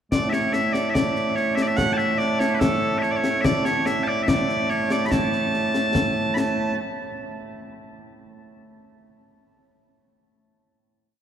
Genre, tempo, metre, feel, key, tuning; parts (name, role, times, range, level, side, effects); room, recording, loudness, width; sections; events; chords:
scottish traditional, Scottish pipe music; 72 BPM; 2/4; straight; A major; A4 = 440 Hz
loud bright bagpipes; melody; 0.1-6.8 s; A2 to B5; -22 LUFS; right 1 dB
concert snare drum and concert bass drum; drums; 0.1-6.8 s; -25 LUFS; left 2 dB
wet cathedral reverb, RT60 5.2 s; recorded in a church or concert hall; -20 LUFS; side -9 dB against mid
0.1-6.8 A section; 6.8-8.4 final hit